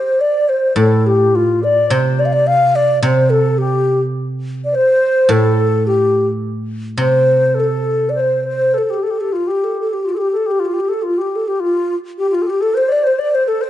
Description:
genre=chinese traditional, Chinese chamber ensemble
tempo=106 BPM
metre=4/4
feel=rubato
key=C zhi mode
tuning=A4 = 438 Hz
part: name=mellow hollow low xiao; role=melody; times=0.0-13.7 s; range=F4 to F5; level=-15 LUFS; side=right 1 dB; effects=none
part: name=bright reedy low xiao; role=second line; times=0.0-13.7 s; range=F4 to F5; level=-20 LUFS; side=left 5 dB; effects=none
part: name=guzheng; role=accompaniment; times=0.8-8.7 s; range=A2 to C3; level=-17 LUFS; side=right 1 dB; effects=none
room=light reverb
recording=dark, warm production, nothing above 10.7 kHz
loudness=-13 LUFS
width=side -12 dB against mid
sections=0.0-8.8 A section; 8.8-13.7 B section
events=none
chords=none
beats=0.20 0.78 1.35 | 1.92 2.49 3.05 3.62 | 4.17 4.74 5.30 5.87 | 6.43 7.00 7.57 8.16 | 8.75 9.34 9.91 10.49 | 11.05 11.62 12.19 12.76 | 13.33

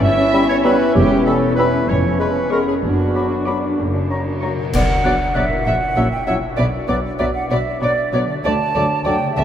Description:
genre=cinematic, playful, whimsical film cue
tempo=65 BPM (dotted quarters)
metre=6/8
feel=straight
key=B minor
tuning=A4 = 440 Hz
part: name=muted studio violin section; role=second line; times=0.0-9.4 s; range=F#4 to E5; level=-29 LUFS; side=equal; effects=none
part: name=warm clarinet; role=second line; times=0.0-9.2 s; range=F#4 to E5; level=-24 LUFS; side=right 3 dB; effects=none
part: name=dark French horn section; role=sustained chords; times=0.0-9.2 s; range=F#3 to E4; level=-25 LUFS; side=left 2 dB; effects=none
part: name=concert harp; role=arpeggios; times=0.0-9.4 s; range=E2 to B5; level=-26 LUFS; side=left 3 dB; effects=none
part: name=muted studio double bass section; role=bass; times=0.0-9.4 s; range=E1 to D2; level=-22 LUFS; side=equal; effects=none
part: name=muted symphonic cello section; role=bass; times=0.0-9.4 s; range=A#2 to D4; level=-23 LUFS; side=right 1 dB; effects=none
part: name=hollow concert flute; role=second line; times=0.3-9.4 s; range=C#5 to E6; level=-24 LUFS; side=right 3 dB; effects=none
part: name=mellow bassoon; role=accompaniment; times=0.3-9.2 s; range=F#3 to G#3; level=-27 LUFS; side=left 4 dB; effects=none
part: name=warm oboe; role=second line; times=0.4-9.2 s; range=D5 to B5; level=-29 LUFS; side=left 4 dB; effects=none
part: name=muted studio violin section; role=melody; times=0.7-9.4 s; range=D5 to D6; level=-26 LUFS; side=left 1 dB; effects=none
part: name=muted studio viola section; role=accompaniment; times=0.7-9.4 s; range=A3 to G#4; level=-29 LUFS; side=right 2 dB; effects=none
part: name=cymbal swell, clash cymbals and concert bass drum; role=percussion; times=1.0-5.9 s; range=none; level=-27 LUFS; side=equal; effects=none
room=wet cathedral reverb, RT60 5.6 s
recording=in a vast, echoing space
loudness=-15 LUFS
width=side -9 dB against mid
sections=0.0-4.7 A section; 4.7-9.4 B section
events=band accent 4.7-5.4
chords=0.0 Em/G; 1.0 Em; 1.9 C#7/E#; 2.8 Bm/F#; 3.8 F#; 4.7 Bm; 5.7 F#7/A#; 6.6 Bm; 8.4 D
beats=0.04 | 0.96 1.89 | 2.83 3.79 | 4.74 5.66 | 6.58 7.50 | 8.44 9.37

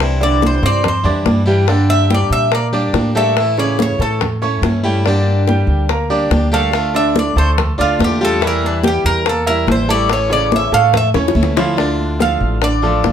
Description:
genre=latin, Cuban son and guajira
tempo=143 BPM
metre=4/4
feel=straight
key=unclear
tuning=A4 = 440 Hz
part: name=picked plugged-in swing-style acoustic guitar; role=accompaniment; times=0.0-13.1 s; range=C3 to G4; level=-22 LUFS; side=left 2 dB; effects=none
part: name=bright grand piano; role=arpeggios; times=0.0-13.1 s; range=C#3 to E6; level=-19 LUFS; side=right 3 dB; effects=none
part: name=upright bass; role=bass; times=0.0-13.1 s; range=G1 to Bb2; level=-18 LUFS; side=equal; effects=none
part: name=bongos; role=percussion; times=0.0-13.1 s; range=none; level=-21 LUFS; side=left 7 dB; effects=none
part: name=congas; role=percussion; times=0.0-13.1 s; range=none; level=-22 LUFS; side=equal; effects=none
part: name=Cuban tres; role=melody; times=0.2-13.1 s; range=D4 to F5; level=-17 LUFS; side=right 1 dB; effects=none
room=moderate studio reverb, RT60 0.6 s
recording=none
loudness=-12 LUFS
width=side -9 dB against mid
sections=0.0-11.8 A section; 11.8-13.1 B section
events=Cuban tres solo 0.0-11.8; drum fill 11.2-11.8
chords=0.0 Cadd9; 1.7 Gm; 3.4 A; 5.1 Gm; 6.7 Dm; 8.4 Edim; 10.1 A; 11.8 Dm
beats=| 0.00 0.42 0.84 1.26 | 1.69 2.11 2.53 2.95 | 3.37 3.79 4.21 4.63 | 5.05 5.47 5.89 6.31 | 6.74 7.16 7.58 8.00 | 8.42 8.84 9.26 9.68 | 10.10 10.52 10.94 11.36 | 11.78 12.20 12.62 13.05

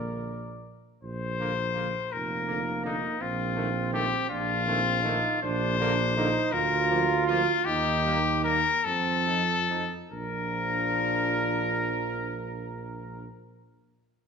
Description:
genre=classical, brass quintet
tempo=46-56 BPM (dotted quarters)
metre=6/8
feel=rubato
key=Bb major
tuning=A4 = 440 Hz
part: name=warm trumpet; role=melody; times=0.0-13.3 s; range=Eb4 to D5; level=-28 LUFS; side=left 5 dB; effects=none
part: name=mellow trumpet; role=second line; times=0.0-13.3 s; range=A3 to Bb4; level=-38 LUFS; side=right 7 dB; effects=none
part: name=dark French horn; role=accompaniment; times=0.0-13.3 s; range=D3 to D4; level=-38 LUFS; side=left 3 dB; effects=none
part: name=mellow trombone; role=accompaniment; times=0.0-13.3 s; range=D3 to F4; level=-32 LUFS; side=right 7 dB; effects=none
part: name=dark tuba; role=bass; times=0.0-13.3 s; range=F1 to F2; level=-32 LUFS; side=right 2 dB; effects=none
room=wet recital hall reverb, RT60 1.6 s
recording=minimal, uncompressed stereo recording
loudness=-25 LUFS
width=side -6 dB against mid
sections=0.0-1.0 A section; 1.0-10.1 B section; 10.1-12.5 C section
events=slowing down 4.3-10.1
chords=0.0 Bb; 3.2 F7/Bb; 5.4 Bb; 6.5 Bb/D; 7.7 Eb; 8.9 F7; 10.1 Bb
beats=| 1.04 2.13 | 3.21 4.30 | 5.43 6.53 | 7.66 8.85 | 10.12 11.30

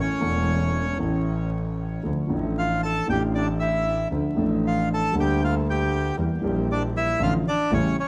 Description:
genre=tango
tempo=116 BPM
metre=4/4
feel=rubato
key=D harmonic minor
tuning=A4 = 440 Hz
part: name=bandoneon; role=melody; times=0.0-8.1 s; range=C#4 to A5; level=-29 LUFS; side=equal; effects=tape echo
part: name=dark concert grand piano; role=accompaniment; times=0.0-7.9 s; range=E1 to A4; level=-28 LUFS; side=equal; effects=none
part: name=clear double bass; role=bass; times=0.0-7.9 s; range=E1 to E2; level=-29 LUFS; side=equal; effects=none
room=moderate studio reverb, RT60 0.8 s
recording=vinyl crackle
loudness=-24 LUFS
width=mono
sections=0.0-8.1 A section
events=none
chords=0.0 A; 2.0 Dm; 3.1 A7sus4; 4.1 Dm; 5.1 Gmadd9/D; 6.2 Edim; 7.2 Dm/A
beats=0.47 0.99 1.52 | 2.04 2.56 3.08 3.59 | 4.11 4.63 5.14 5.65 | 6.17 6.68 7.20 7.71

